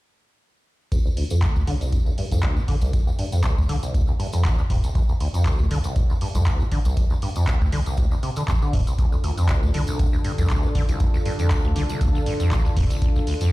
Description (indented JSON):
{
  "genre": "acid house",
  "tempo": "119 BPM",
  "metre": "4/4",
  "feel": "swing 55% on 16ths",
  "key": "D minor pentatonic",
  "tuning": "A4 = 440 Hz",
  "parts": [
    { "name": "acid bass, saw", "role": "riff", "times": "0.9-13.5 s", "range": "D1 to D3", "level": "-24 LUFS", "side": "equal", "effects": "tube saturation, analog chorus, cassette tape, sidechain pumping, digital delay" },
    { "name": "electronic kick drum", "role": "drums", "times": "0.9-13.1 s", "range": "none", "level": "-21 LUFS", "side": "equal", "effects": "none" },
    { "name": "punchy analog drum machine", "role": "drums", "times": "0.9-13.5 s", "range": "handclaps, hi-hat", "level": "-34 LUFS", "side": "equal", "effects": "none" },
    { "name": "tambourine", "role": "percussion", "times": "0.9-13.5 s", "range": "none", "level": "-42 LUFS", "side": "left 2 dB", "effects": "none" },
    { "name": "round analog bass", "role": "bass", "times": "1.6-12.9 s", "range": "D1 to D2", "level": "-22 LUFS", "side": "equal", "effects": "tube saturation, sidechain pumping" },
    { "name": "warm analog pad", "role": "sustained chords", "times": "9.0-13.5 s", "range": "D3 to A4", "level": "-30 LUFS", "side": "equal", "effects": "chorus, sidechain pumping" }
  ],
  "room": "little or no reverb",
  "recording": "played on a big sound system in a bare room, large studio reverb",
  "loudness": "-19 LUFS",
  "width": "side -19 dB against mid",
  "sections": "0.9-13.5 A section",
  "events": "filter sweep on acid bass 0.9-13.5",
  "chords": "0.9 Dm"
}